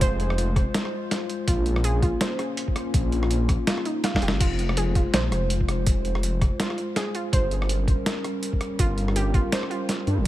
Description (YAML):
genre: half-time drum and bass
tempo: 164 BPM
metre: 4/4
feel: swing 57% on 16ths, half-time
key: unclear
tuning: A4 = 439 Hz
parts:
  - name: dark analog pad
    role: sustained chords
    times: 0.0-10.3 s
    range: G3 to C5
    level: -30 LUFS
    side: left 2 dB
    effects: chorus, sidechain pumping
  - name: warbly dusty pluck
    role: arpeggios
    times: 0.0-9.9 s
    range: Eb4 to F5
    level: -31 LUFS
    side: right 2 dB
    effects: chorus, dub echo
  - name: dark detuned saw bass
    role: bass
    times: 0.0-10.2 s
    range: F1 to G2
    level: -24 LUFS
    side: equal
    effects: none
  - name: boom bap sampler-style drum kit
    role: drums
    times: 0.0-10.2 s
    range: crash cymbal, hi-hat, rim click, snare drum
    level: -28 LUFS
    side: equal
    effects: none
  - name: electronic kick drum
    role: drums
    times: 0.0-9.4 s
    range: none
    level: -23 LUFS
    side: equal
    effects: none
room: digital ambience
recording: none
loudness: -22 LUFS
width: side -14 dB against mid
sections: 0.0-10.3 A section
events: drum fill 4.0-4.4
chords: 0.0 Fm; 1.5 Bbm; 4.4 Fm; 7.3 Gdim